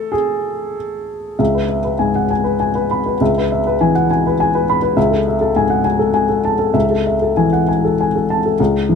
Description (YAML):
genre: neoclassical minimalist piano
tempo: 99 BPM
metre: 3/4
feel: rubato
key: unclear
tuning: A4 = 440 Hz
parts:
  - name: warm upright piano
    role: solo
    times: 0.0-9.0 s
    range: C#2 to B5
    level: -14 LUFS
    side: left 2 dB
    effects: none
room: little or no reverb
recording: close, detailed microphones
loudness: -14 LUFS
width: side -6 dB against mid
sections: 0.0-1.4 A section; 1.4-8.6 B section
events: none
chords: 0.0 Amaj7(no3); 1.4 C#m7; 5.0 Amaj7/C#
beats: 0.15 0.77 | 1.39 2.00 2.60 | 3.20 3.79 4.38 | 4.96 5.54 6.14 | 6.74 7.36 7.97 | 8.59